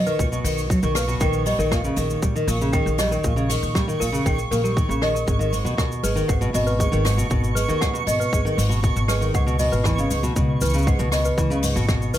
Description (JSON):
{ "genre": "folktronica", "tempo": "118 BPM", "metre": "4/4", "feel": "straight", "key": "unclear", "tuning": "A4 = 438 Hz", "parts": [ { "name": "nylon-string guitar", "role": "arpeggios", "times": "0.0-12.2 s", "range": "G#2 to A#3", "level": "-24 LUFS", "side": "equal", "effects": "vintage 12-bit sampler grit, digital delay" }, { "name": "upright bass", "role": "bass", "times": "0.0-12.2 s", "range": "G#1 to D#2", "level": "-24 LUFS", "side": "equal", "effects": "none" }, { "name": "twinkling granular texture", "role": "texture", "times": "0.0-12.2 s", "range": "C#6", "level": "-31 LUFS", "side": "right 6 dB", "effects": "built-in reverb" }, { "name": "toy piano", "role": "second line", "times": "0.1-12.2 s", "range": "A#4 to G5", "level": "-27 LUFS", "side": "equal", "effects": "digital delay" }, { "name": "jazz brush drum kit", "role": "drums", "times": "0.1-12.2 s", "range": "cabasa, hi-hat, rim click", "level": "-30 LUFS", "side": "left 1 dB", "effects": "none" }, { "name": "electronic kick drum", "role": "drums", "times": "0.2-12.0 s", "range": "none", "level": "-23 LUFS", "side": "equal", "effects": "none" } ], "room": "moderate studio reverb, RT60 0.5 s", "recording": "none", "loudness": "-19 LUFS", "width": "side -12 dB against mid", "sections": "0.0-12.2 A section", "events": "none", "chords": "0.0 Bmaj7; 1.2 D#7/A#; 5.3 G#m; 9.3 C#m7" }